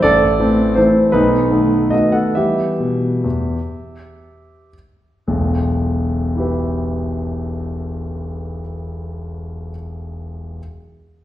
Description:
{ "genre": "classical, piano waltz", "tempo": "106-172 BPM", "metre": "3/4", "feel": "rubato", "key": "E minor", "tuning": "A4 = 438 Hz", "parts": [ { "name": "warm concert grand piano", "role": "solo", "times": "0.0-10.6 s", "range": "E1 to F#5", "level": "-16 LUFS", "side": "equal", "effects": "none" } ], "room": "wet recital hall reverb, RT60 1.4 s", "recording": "heard from further back in the room", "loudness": "-15 LUFS", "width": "side -13 dB against mid", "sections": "0.0-5.3 A section; 5.3-8.4 B section", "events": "slowing down 1.7-5.3", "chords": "0.0 Am; 1.1 B7; 2.4 Em" }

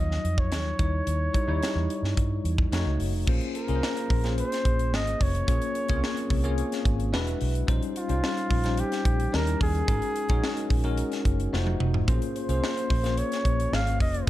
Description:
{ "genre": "polished 1980s jazz-funk pop", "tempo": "109 BPM", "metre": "4/4", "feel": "straight", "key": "Bb minor", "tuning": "A4 = 440 Hz", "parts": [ { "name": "breathy flugelhorn", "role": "melody", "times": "0.0-14.3 s", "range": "F4 to F5", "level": "-32 LUFS", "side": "equal", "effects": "none" }, { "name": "bell-like tine electric piano", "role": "accompaniment", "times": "0.0-14.3 s", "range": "F3 to Ab5", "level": "-30 LUFS", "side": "left 2 dB", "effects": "medium stereo tremolo, lush chorus" }, { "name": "vintage muted fingered electric bass", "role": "bass", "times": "0.0-14.3 s", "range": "E1 to G2", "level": "-27 LUFS", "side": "equal", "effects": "none" }, { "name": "crisp fusion drum kit", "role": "drums", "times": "0.1-14.3 s", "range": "crash cymbal, hi-hat, kick drum, snare drum, toms", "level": "-28 LUFS", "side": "equal", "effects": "none" } ], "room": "studio ambience", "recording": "dark, warm production", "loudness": "-24 LUFS", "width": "side -15 dB against mid", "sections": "0.0-3.3 A section; 3.3-14.3 B section", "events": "tine electric piano fill 6.6-7.7; drum fill 11.5-12.1", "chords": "0.0 Ebm9; 0.8 Eb7b9; 2.7 F7b9b13; 3.3 Bbm9; 7.1 E9; 7.7 Eb13/Bb; 9.3 Eb7b9; 9.9 Ab9sus4; 11.5 F7b9; 12.1 Bbm9" }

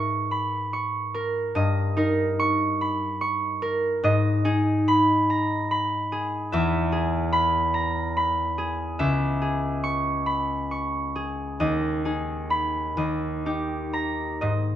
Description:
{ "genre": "classical, solo harp piece", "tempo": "41-50 BPM (dotted quarters)", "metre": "6/8", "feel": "rubato", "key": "G# minor", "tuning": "A4 = 440 Hz", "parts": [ { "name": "concert harp", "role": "solo", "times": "0.0-14.8 s", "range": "C#2 to C#6", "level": "-22 LUFS", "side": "equal", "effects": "none" } ], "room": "light reverb", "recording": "none", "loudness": "-22 LUFS", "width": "side -11 dB against mid", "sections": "0.0-14.8 A section", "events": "none", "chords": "0.0 A#m7b5/G#; 1.6 D#7/G; 4.0 G#m; 6.5 E; 9.0 C#m; 11.6 G#m/D#; 13.0 D#" }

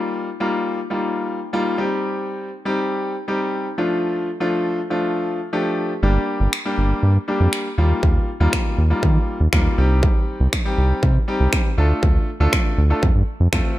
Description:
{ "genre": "dance-pop", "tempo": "120 BPM", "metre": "4/4", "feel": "straight", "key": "unclear", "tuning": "A4 = 440 Hz", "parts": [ { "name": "clear concert grand piano", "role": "accompaniment", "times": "0.0-13.8 s", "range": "F3 to A4", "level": "-22 LUFS", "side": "left 1 dB", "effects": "sidechain pumping" }, { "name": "round analog bass", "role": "bass", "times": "6.0-13.6 s", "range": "G1 to Eb3", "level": "-16 LUFS", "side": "equal", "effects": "sidechain pumping" }, { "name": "industrial drum kit", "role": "drums", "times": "6.5-13.6 s", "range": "finger snaps, kick drum", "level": "-19 LUFS", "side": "equal", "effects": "distortion, overdrive" } ], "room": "light reverb, digital ambience", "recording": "none", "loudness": "-17 LUFS", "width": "side -15 dB against mid", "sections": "0.0-13.8 A section", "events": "none", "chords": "0.0 Ebadd9; 1.8 Cm; 3.8 Dm; 6.0 Gm; 7.8 Ebadd9; 9.8 Cm; 11.8 Dm; 13.0 F" }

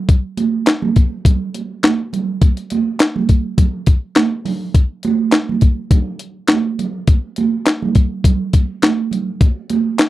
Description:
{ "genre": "funk", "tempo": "103 BPM", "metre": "4/4", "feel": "straight", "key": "none", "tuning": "none", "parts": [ { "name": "breakbeat sampler-style drum kit", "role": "drums", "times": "0.1-10.1 s", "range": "handclaps, hi-hat, kick drum, snare drum", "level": "-12 LUFS", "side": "left 1 dB", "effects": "none" }, { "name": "congas", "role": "percussion", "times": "0.4-9.8 s", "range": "none", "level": "-19 LUFS", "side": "right 6 dB", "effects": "none" } ], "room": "light reverb", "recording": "dry, close 1970s-style studio recording", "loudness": "-14 LUFS", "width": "side -16 dB against mid", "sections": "0.0-10.1 A section", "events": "none", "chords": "none" }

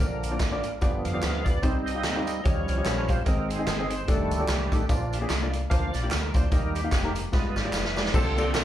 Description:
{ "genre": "uptempo gospel", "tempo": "147 BPM", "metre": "4/4", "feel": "swing 58% on 8ths", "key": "Eb major", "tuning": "A4 = 439 Hz", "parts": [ { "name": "dark upright piano", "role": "accompaniment", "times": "0.0-8.6 s", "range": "G2 to F5", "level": "-31 LUFS", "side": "left 2 dB", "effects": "slapback echo" }, { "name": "bright tonewheel organ", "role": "sustained chords", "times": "0.0-8.6 s", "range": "D3 to F5", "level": "-31 LUFS", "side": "right 2 dB", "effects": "fast rotary speaker, overdrive, chorus vibrato" }, { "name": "deep dub fingered electric bass", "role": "bass", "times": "0.0-8.6 s", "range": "F1 to F2", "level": "-30 LUFS", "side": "equal", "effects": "none" }, { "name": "swinging big-band drum kit", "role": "drums", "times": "0.2-8.6 s", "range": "crash cymbal, hi-hat, kick drum, ride cymbal, snare drum", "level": "-27 LUFS", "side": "equal", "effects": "none" }, { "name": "tambourine and handclaps", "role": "percussion", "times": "0.2-8.6 s", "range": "none", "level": "-40 LUFS", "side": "right 2 dB", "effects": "none" }, { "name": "dark saxophone section", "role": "melody", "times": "8.1-8.6 s", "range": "D4 to Bb4", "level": "-28 LUFS", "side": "equal", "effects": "slapback echo" } ], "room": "light reverb, small room ambience", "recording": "live gig heard through the venue's PA, club reverb", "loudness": "-23 LUFS", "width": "side -12 dB against mid", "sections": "0.0-8.1 A section", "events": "tonewheel organ solo 0.0-8.1; drum fill 7.3-8.1", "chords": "0.0 Bb; 0.8 G7; 1.6 Cm; 2.4 Eb9; 3.3 Ab; 4.1 F13; 4.9 Bb; 6.5 Eb; 7.3 G7b9" }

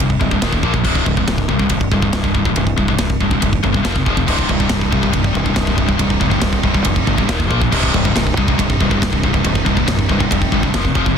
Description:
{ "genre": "heavy metal", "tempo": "140 BPM", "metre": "4/4", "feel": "straight", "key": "C minor", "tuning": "A4 = 440 Hz", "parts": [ { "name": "scooped high-gain guitar", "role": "riff", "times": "0.0-11.2 s", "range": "C2 to Bb3", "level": "-19 LUFS", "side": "left 11 dB", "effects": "distortion" }, { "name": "scooped high-gain guitar", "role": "riff", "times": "0.0-11.2 s", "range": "C2 to Bb3", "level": "-20 LUFS", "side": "right 11 dB", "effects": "distortion" }, { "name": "growling fingered electric bass", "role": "bass", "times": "0.0-11.2 s", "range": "C1 to C2", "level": "-21 LUFS", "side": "equal", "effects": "overdrive" }, { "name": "tight metal drum kit", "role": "drums", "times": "0.0-11.2 s", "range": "crash cymbal, kick drum, ride cymbal, snare drum", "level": "-19 LUFS", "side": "equal", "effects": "none" }, { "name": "heavy high-gain guitar", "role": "riff", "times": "4.3-10.7 s", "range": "C2 to Eb4", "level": "-23 LUFS", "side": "equal", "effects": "distortion" } ], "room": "small room ambience", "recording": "dense, heavily limited modern master", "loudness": "-14 LUFS", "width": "side -7 dB against mid", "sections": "0.0-11.2 A section", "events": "none", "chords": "0.4 Eb5; 0.6 Bb5; 0.9 C5; 3.9 F5; 4.3 Cm; 7.3 Eb5; 7.5 Bb5; 7.7 Cm; 10.7 F5" }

